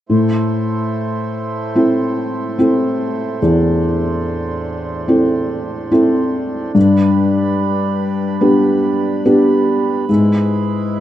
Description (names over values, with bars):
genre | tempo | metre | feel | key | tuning
pop | 72 BPM | 4/4 | straight | A minor | A4 = 440 Hz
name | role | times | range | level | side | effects
felt-muted upright piano | accompaniment | 0.1-11.0 s | E2 to A4 | -14 LUFS | left 1 dB | none
pedal harmonium | sustained chords | 0.1-11.0 s | G2 to C5 | -23 LUFS | right 4 dB | stereo widening
room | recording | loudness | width
light reverb, small room ambience | rough home demo mix, nothing above 10.9 kHz | -14 LUFS | side -12 dB against mid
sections
0.1-11.0 A section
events
none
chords
0.1 Am; 6.8 G; 10.1 E/G#